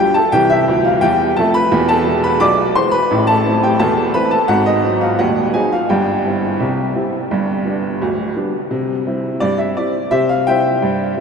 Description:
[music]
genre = ragtime piano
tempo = 86 BPM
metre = 2/4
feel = straight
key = C major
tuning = A4 = 439 Hz
[part]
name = warm baby grand piano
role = solo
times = 0.0-11.2 s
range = D1 to D6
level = -13 LUFS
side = equal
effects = none
[sound]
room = wet huge ambient reverb, RT60 8.2 s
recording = in a vast, echoing space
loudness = -13 LUFS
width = side -6 dB against mid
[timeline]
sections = 0.0-8.7 A section; 8.7-11.2 B section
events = none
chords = 0.3 C; 1.7 E7; 3.1 Am; 4.5 Ab7; 5.9 C/G; 7.3 G; 8.7 C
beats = | 0.32 1.02 | 1.71 2.40 | 3.10 3.79 | 4.49 5.19 | 5.90 6.61 | 7.31 8.02 | 8.72 9.42 | 10.12 10.82

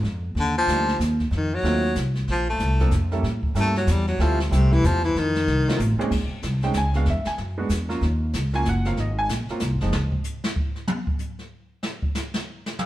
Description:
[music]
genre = jazz, small-group swing and bop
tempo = 188 BPM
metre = 3/4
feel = swing 61% on 8ths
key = Bb minor from 6.1 s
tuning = A4 = 440 Hz
[part]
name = upright bass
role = bass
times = 0.0-10.1 s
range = Gb1 to A2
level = -22 LUFS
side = equal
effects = none
[part]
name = jazz brush drum kit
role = drums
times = 0.0-12.9 s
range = brushed snare drum, crash cymbal, hi-hat, kick drum, snare drum, toms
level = -29 LUFS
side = equal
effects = none
[part]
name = clear baritone saxophone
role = melody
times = 0.4-5.8 s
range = A2 to A3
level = -24 LUFS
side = left 2 dB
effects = none
[part]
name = clear upright piano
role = accompaniment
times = 0.7-9.9 s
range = Bb2 to Ab5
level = -28 LUFS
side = right 2 dB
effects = none
[sound]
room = moderate stone room reverb, RT60 1.1 s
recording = band playing live in one room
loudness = -21 LUFS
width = side -15 dB against mid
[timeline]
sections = 0.0-6.1 A section; 6.1-12.9 A section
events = baritone saxophone solo 0.0-6.1; drum fill 5.5-6.1; drum solo 9.9-12.9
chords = 0.4 Ebmaj9; 1.3 F7b9; 2.3 Bbmaj7sus2; 3.2 A7b9; 4.2 Dm11; 5.2 F7; 6.1 Bbm9; 7.1 Eadd9; 8.0 Ebm7; 9.0 Ab13; 9.9 N.C.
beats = 0.04 | 0.36 0.68 1.00 | 1.32 1.64 1.96 | 2.28 2.60 2.92 | 3.24 3.56 3.88 | 4.20 4.51 4.83 | 5.15 5.47 5.79 | 6.11 6.43 6.75 | 7.06 7.38 7.70 | 8.02 8.34 8.66 | 8.97 9.29 9.61 | 9.93 10.25 10.57 | 10.88 11.20 11.52 | 11.84 12.16 12.48 | 12.79

